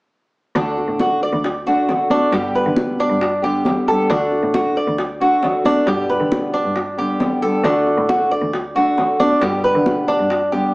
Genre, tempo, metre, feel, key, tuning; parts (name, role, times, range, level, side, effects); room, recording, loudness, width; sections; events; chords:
latin, Cuban son and guajira; 135 BPM; 4/4; straight; D major; A4 = 440 Hz
fingerpicked steel-string acoustic guitar; accompaniment; 0.6-10.7 s; B2 to G4; -20 LUFS; equal
Cuban tres; arpeggios; 0.6-10.7 s; D4 to D5; -18 LUFS; equal
clear cello; bass; 0.6-10.7 s; D2 to D3; -25 LUFS; equal
bongos; percussion; 0.6-10.5 s; -26 LUFS; left 1 dB
congas; percussion; 0.6-10.7 s; -25 LUFS; equal
moderate studio reverb, RT60 0.6 s; heard from further back in the room, small speaker sound; -15 LUFS; side -25 dB against mid
0.6-10.7 A section
0.6 D; 2.3 G; 4.1 D; 5.9 G; 7.6 D; 9.4 G